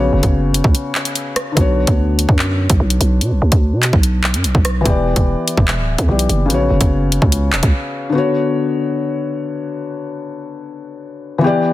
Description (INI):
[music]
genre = hip hop, drill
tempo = 146 BPM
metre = 4/4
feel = half-time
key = B minor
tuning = A4 = 443 Hz
[part]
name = felt-muted upright piano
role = accompaniment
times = 0.0-11.7 s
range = C#3 to D5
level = -19 LUFS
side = left 3 dB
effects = none
[part]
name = growling 808-style bass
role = bass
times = 0.0-7.7 s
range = D1 to B2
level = -16 LUFS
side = equal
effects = none
[part]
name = drill drum kit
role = drums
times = 0.2-7.7 s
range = handclaps, hi-hat, kick drum, rim click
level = -16 LUFS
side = equal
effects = none
[sound]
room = digital ambience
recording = dense, heavily limited modern master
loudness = -14 LUFS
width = side -15 dB against mid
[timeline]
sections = 0.0-8.1 A section; 8.1-11.7 B section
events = break 0.7-1.6, 7.7-8.1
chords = 0.0 F#sus4; 1.6 Bmadd9; 4.9 Em7; 6.5 F#sus4; 8.1 Bmadd9